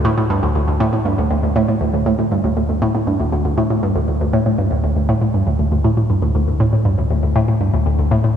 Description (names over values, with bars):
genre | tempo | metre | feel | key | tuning
ambient | 119 BPM | 4/4 | straight | unclear | A4 = 439 Hz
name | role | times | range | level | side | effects
hollow square pluck | solo | 0.0-8.3 s | D2 to A2 | -15 LUFS | equal | chorus, phaser, analog delay
room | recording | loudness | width
wet cathedral reverb, RT60 5.0 s | in a vast, echoing space, nothing above 10.5 kHz | -15 LUFS | side -8 dB against mid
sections
0.0-1.8 A section; 1.8-8.4 B section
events
none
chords
none